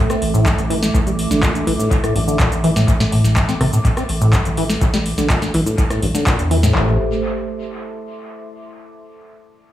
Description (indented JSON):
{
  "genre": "acid house",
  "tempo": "124 BPM",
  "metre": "4/4",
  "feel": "straight",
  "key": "A minor",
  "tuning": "A4 = 440 Hz",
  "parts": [
    { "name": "warbly tape-like pad", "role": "sustained chords", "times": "0.0-7.0 s", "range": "A3 to E5", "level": "-26 LUFS", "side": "right 3 dB", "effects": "chorus, built-in reverb, sidechain pumping" },
    { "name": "liquid acid bass", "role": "riff", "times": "0.0-7.0 s", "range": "G2 to C4", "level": "-18 LUFS", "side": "equal", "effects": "phaser, tube saturation, cassette tape, sidechain pumping, analog delay" },
    { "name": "deep dark ambient pad", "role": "texture", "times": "0.1-8.6 s", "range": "A4 to D6", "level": "-33 LUFS", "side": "left 2 dB", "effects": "chorus, built-in reverb, sidechain pumping" },
    { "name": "booming analog drum machine", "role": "drums", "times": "0.1-6.7 s", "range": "handclaps, hi-hat, rim click, shaker, snare drum", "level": "-22 LUFS", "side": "left 1 dB", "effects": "overdrive, dub echo" },
    { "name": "saturated sub bass", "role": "bass", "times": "0.2-7.0 s", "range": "A1 to E2", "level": "-22 LUFS", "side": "equal", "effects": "sidechain pumping" },
    { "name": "booming analog drum machine", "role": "drums", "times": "0.5-6.9 s", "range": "handclaps, kick drum", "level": "-19 LUFS", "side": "equal", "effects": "overdrive" }
  ],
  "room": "light reverb",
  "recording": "echo-heavy mix, studio reverb",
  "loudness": "-14 LUFS",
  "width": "side -13 dB against mid",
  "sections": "0.0-6.8 A section; 6.8-8.7 B section",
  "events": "fade-out on ambient pad 0.0-6.8; filter sweep on ambient pad 0.0-6.8",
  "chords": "0.0 A5; 6.8 Am"
}